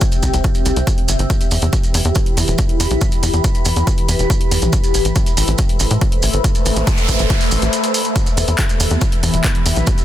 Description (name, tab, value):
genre	uplifting trance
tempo	140 BPM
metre	4/4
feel	straight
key	E minor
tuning	A4 = 440 Hz
part	shimmering ambient pad	sustained chords	0.0-10.0 s	C3 to B5	-21 LUFS	left 1 dB	chorus, built-in reverb, phaser, sidechain pumping
part	electronic kick drum	drums	0.0-10.0 s	none	-17 LUFS	equal	none
part	punchy analog drum machine	drums	0.0-10.0 s	handclaps, hi-hat	-24 LUFS	left 1 dB	none
part	maracas	percussion	0.0-10.0 s	none	-26 LUFS	right 4 dB	none
part	tight sequencer bass	bass	0.2-9.8 s	E1 to A2	-17 LUFS	equal	sidechain pumping
part	noise sweep	sound effects	6.6-8.2 s	none	-25 LUFS	right 1 dB	none
room	little or no reverb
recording	dense, heavily limited modern master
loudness	-14 LUFS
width	side -12 dB against mid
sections	0.0-10.0 A section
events	filter sweep on ambient pad 0.0-10.0; noise sweep 6.6-8.2; kick drops out 7.7-8.2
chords	0.0 C; 1.3 Em; 4.7 Amadd9; 8.2 Em